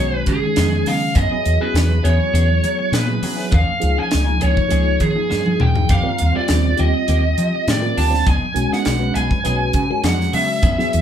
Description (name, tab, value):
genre	electric jazz fusion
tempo	101 BPM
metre	4/4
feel	straight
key	unclear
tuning	A4 = 442 Hz
part	bluesy overdriven lead guitar	melody	0.0-11.0 s	Ab4 to A5	-21 LUFS	right 1 dB	distortion
part	tine electric piano	accompaniment	0.0-11.0 s	Eb3 to C5	-24 LUFS	right 1 dB	medium stereo tremolo, phaser
part	clean electric guitar	stabs	0.0-11.0 s	Eb3 to Ab4	-28 LUFS	left 2 dB	none
part	woody fretless electric bass	bass	0.0-11.0 s	Cb2 to Gb3	-19 LUFS	equal	none
part	crisp fusion drum kit	drums	0.3-11.0 s	hi-hat, kick drum, snare drum, toms	-21 LUFS	equal	none
room	moderate studio reverb, RT60 0.6 s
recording	band playing live in one room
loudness	-15 LUFS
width	side -9 dB against mid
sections	0.0-11.0 A section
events	drum fill 5.3-5.9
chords	0.0 Db9sus4; 1.2 Gb9sus4; 3.5 Eb9sus4; 5.9 F9sus4; 8.3 Db9sus4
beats	0.57 | 1.16 1.75 2.35 2.94 | 3.53 4.12 4.71 5.30 | 5.90 6.49 7.08 7.67 | 8.27 8.86 9.45 10.04 | 10.63